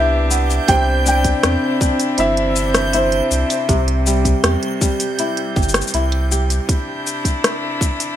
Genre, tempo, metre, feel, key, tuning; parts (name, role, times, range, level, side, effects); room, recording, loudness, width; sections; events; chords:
folktronica; 80 BPM; 4/4; straight; C major; A4 = 441 Hz
felt-muted upright piano; melody; 0.0-3.7 s; C5 to G5; -21 LUFS; right 1 dB; ping-pong delay
vibraphone with hard mallets; second line; 0.0-3.7 s; C4 to E5; -23 LUFS; left 1 dB; ping-pong delay
bright string quartet; sustained chords; 0.0-8.2 s; C3 to G4; -25 LUFS; left 1 dB
kora; arpeggios; 0.0-7.7 s; C3 to G4; -23 LUFS; left 1 dB; ping-pong delay
warm sub bass; bass; 0.0-6.6 s; G1 to E2; -19 LUFS; equal
backwards swelling texture; texture; 0.0-8.2 s; G6; -28 LUFS; right 4 dB; built-in reverb
organic electronic drum kit; drums; 0.3-8.2 s; hi-hat, rim click, shaker; -21 LUFS; left 2 dB; studio reverb
electronic kick drum; drums; 0.7-8.0 s; -18 LUFS; equal; studio reverb
light reverb; -15 LUFS; side -11 dB against mid
0.0-8.2 A section
0.0 Cmaj9; 0.7 Cadd9; 3.7 C; 6.7 Cadd9